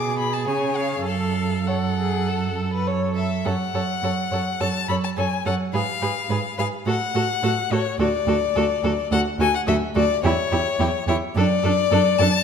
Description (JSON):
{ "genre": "quick classical-period movement for string quartet", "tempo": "106 BPM", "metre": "4/4", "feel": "rubato", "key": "F# minor", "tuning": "A4 = 440 Hz", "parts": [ { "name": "clear violin", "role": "melody", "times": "0.0-12.4 s", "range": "C#5 to D6", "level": "-24 LUFS", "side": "left 8 dB", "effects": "none" }, { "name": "clear violin", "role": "second line", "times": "0.0-12.3 s", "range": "G4 to C#5", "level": "-29 LUFS", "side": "left 2 dB", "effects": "none" }, { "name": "clear viola", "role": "accompaniment", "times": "0.0-12.3 s", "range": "D4 to C#5", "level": "-28 LUFS", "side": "right 2 dB", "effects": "none" }, { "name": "clear cello", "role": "bass", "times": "0.0-12.3 s", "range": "D2 to C#3", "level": "-24 LUFS", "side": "right 4 dB", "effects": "none" } ], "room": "moderate scoring stage reverb, RT60 1.6 s", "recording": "none", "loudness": "-20 LUFS", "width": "side -7 dB against mid", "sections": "0.0-3.5 A section; 3.5-12.4 B section", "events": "none", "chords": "0.5 C#; 1.1 F#m; 5.7 Fdim/Ab; 6.9 F#m/A; 8.0 D; 10.2 C#dim/E; 11.4 D/F#" }